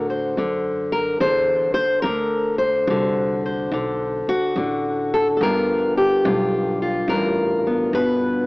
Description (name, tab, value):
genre	acoustic country blues, solo or duo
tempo	72 BPM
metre	4/4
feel	swing 65% on 8ths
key	unclear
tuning	A4 = 440 Hz
part	fingerpicked steel-string acoustic guitar	melody	0.0-8.5 s	G2 to C5	-19 LUFS	left 1 dB	none
part	upright bass	bass	0.0-8.5 s	G1 to A2	-28 LUFS	equal	none
room	light reverb, small room reverb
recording	home recording on cassette, AM radio sound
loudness	-18 LUFS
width	side -26 dB against mid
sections	0.0-8.5 A section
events	none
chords	0.0 D7; 5.4 G7